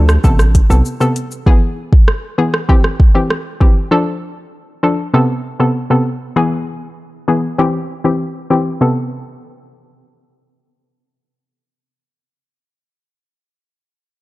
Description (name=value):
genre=dancehall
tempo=98 BPM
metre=4/4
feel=straight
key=A minor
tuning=A4 = 440 Hz
part: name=hollow square pluck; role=accompaniment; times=0.0-12.7 s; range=C3 to A4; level=-15 LUFS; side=left 1 dB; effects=chorus, low-pass filter
part: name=hard-hitting 808-style bass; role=bass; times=0.0-0.8 s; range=A1 to D2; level=-11 LUFS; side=equal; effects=none
part: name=afro-pop drum kit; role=drums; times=0.1-3.8 s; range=hi-hat, kick drum, rim click, shaker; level=-11 LUFS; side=equal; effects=none
room=little or no reverb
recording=dark, warm production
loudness=-12 LUFS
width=side -18 dB against mid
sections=0.0-8.8 A section; 8.8-11.3 B section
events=filter sweep on synth pluck 0.0-8.8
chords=0.2 Amadd9; 1.5 E; 2.7 C; 3.9 Dm; 5.1 Amadd9; 6.4 E; 7.6 C; 8.8 Amadd9